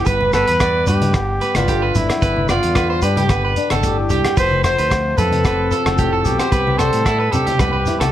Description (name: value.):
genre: highlife guitar band.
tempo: 112 BPM.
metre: 4/4.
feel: straight.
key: G mixolydian.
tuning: A4 = 440 Hz.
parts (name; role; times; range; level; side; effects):
breathy trumpet; melody; 0.0-8.1 s; E4 to C5; -20 LUFS; equal; none.
flamenco guitar; accompaniment; 0.0-8.1 s; F2 to F4; -26 LUFS; left 7 dB; none.
electric guitar at the edge of break-up; arpeggios; 0.0-8.1 s; E4 to D5; -21 LUFS; right 3 dB; slapback echo.
fingered electric bass; bass; 0.0-8.1 s; F1 to C3; -21 LUFS; equal; none.
cloth-damped thuddy drum kit; drums; 0.1-8.1 s; hi-hat, kick drum, rim click; -21 LUFS; equal; none.
shekere; percussion; 0.1-8.0 s; none; -24 LUFS; left 2 dB; none.
congas; percussion; 0.2-8.1 s; none; -25 LUFS; equal; none.
agogo bells; percussion; 0.3-8.1 s; none; -30 LUFS; left 2 dB; none.
room: light reverb.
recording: none.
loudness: -14 LUFS.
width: side -12 dB against mid.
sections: 0.0-8.1 A section.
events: none.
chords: 0.1 G; 4.4 F; 6.5 C.